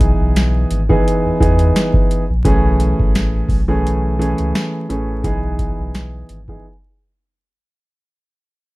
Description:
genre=hip hop, boom-bap hip-hop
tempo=86 BPM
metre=4/4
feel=swing 56% on 16ths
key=unclear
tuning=A4 = 440 Hz
part: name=dark grand piano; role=accompaniment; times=0.0-6.6 s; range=E3 to G#4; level=-19 LUFS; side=right 1 dB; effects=cassette tape, low-pass filter
part: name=warm sub bass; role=bass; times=0.0-6.6 s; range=G#1 to E2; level=-18 LUFS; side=equal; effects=none
part: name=booming analog drum machine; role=drums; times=0.0-6.6 s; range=hi-hat, kick drum, snare drum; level=-18 LUFS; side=equal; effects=none
room=light reverb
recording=dark, warm production, vinyl crackle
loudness=-14 LUFS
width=side -20 dB against mid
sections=0.0-2.4 A section; 2.4-8.0 B section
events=fade-out 2.4-8.0; filter sweep on grand piano 2.4-8.0; break 6.6-8.0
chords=0.0 Emaj7; 2.4 Amaj7; 5.2 Emaj7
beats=0.35 1.05 1.75 | 2.45 3.15 3.84 4.54 | 5.24 5.93 6.63

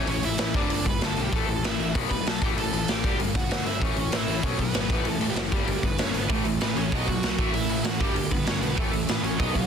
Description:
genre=punk rock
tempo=193 BPM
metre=4/4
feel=straight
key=A mixolydian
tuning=A4 = 439 Hz
part: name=crunchy overdriven guitar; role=melody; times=0.0-9.7 s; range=F#3 to B5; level=-31 LUFS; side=right 4 dB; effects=digital delay
part: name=tight distorted guitar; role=riff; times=0.0-9.7 s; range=G2 to B3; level=-31 LUFS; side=left 12 dB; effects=distortion
part: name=fuzz picked electric bass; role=bass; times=0.0-9.7 s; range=F#1 to B1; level=-31 LUFS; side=equal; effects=overdrive
part: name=raw garage drum kit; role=drums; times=0.1-9.6 s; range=hi-hat, kick drum, snare drum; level=-26 LUFS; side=equal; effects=none
part: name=cranked stack guitar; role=riff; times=6.3-9.7 s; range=G2 to B3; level=-31 LUFS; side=right 15 dB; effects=overdrive
room=little or no reverb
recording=dense, heavily limited modern master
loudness=-23 LUFS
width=side -7 dB against mid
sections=0.0-9.7 A section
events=none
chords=0.0 A; 0.5 G; 1.3 A5; 1.9 B5; 2.4 A5; 3.0 G5; 3.8 A; 4.4 B5; 4.9 A5; 5.5 G; 6.3 A; 6.9 B; 7.4 A5; 8.0 G; 8.8 A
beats=| 0.07 0.38 0.69 1.00 | 1.32 1.63 1.94 2.25 | 2.57 2.88 3.19 3.50 | 3.81 4.12 4.43 4.74 | 5.05 5.36 5.67 5.98 | 6.29 6.60 6.91 7.22 | 7.54 7.84 8.15 8.47 | 8.78 9.09 9.40

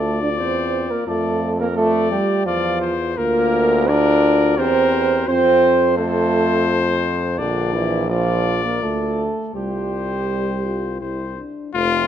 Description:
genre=classical, brass quintet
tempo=85 BPM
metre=3/4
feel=rubato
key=D minor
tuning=A4 = 441 Hz
part: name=clear trumpet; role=melody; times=0.0-12.1 s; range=F4 to D5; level=-24 LUFS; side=left 8 dB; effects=none
part: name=mellow flugelhorn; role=second line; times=0.0-12.1 s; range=C4 to D5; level=-26 LUFS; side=right 4 dB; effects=none
part: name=dark French horn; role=accompaniment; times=0.0-12.1 s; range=A3 to G4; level=-27 LUFS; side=left 3 dB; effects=none
part: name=warm euphonium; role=accompaniment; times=0.0-12.1 s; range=D3 to D4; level=-20 LUFS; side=right 2 dB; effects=none
part: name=warm bass trombone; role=bass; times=0.0-12.1 s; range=F1 to F2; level=-24 LUFS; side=right 1 dB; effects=none
room=moderate scoring stage reverb, RT60 1.8 s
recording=none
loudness=-16 LUFS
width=side -10 dB against mid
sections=0.0-11.7 A section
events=none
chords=0.0 Dm; 1.1 Dm/F; 3.2 Bb/D; 4.6 C7/E; 5.3 F; 7.4 Bb; 9.6 Csus4; 11.0 C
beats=0.39 | 1.08 1.77 2.46 | 3.18 3.89 4.58 | 5.28 5.98 6.68 | 7.39 8.10 8.82 | 9.55 10.29 11.01 | 11.74

